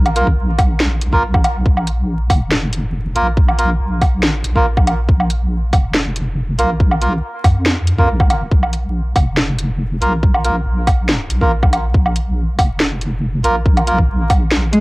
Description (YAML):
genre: deep dubstep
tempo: 140 BPM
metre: 4/4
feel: half-time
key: unclear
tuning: A4 = 442 Hz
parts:
  - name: deep soft wobble bass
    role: bass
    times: 0.0-14.8 s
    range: F1 to F2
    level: -18 LUFS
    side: equal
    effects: chorus
  - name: garage drum kit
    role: drums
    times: 0.1-14.8 s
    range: hi-hat, snare drum, woodblock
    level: -19 LUFS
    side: equal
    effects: overdrive, cassette tape
  - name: melodica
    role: stabs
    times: 0.2-14.0 s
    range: Bb3 to Bb4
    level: -20 LUFS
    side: right 1 dB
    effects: low-pass filter, dub echo
  - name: electronic kick drum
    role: drums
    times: 0.3-14.4 s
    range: none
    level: -13 LUFS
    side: equal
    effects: overdrive, cassette tape
  - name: clear cello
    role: melody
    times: 14.7-14.8 s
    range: Ab3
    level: -10 LUFS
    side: equal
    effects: cassette tape
room: little or no reverb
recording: home recording on cassette, vinyl crackle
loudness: -13 LUFS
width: side -23 dB against mid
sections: 0.0-14.8 A section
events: none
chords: 0.0 Bb5